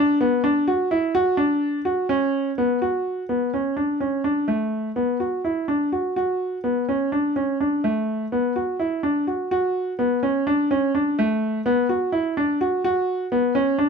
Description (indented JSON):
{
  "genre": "progressive instrumental, progressive",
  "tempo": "252 BPM (eighths)",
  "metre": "7/8",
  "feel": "straight",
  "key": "B minor",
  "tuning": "A4 = 437 Hz",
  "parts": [
    { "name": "clear baby grand piano", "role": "solo", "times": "0.0-13.9 s", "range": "A3 to F#4", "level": "-20 LUFS", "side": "equal", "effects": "none" }
  ],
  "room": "wet small room reverb, RT60 0.5 s",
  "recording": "dark, warm production",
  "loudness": "-20 LUFS",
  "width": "side -5 dB against mid",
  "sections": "0.0-2.8 A section; 2.8-9.5 B section; 9.5-13.9 C section",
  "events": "none",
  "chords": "none"
}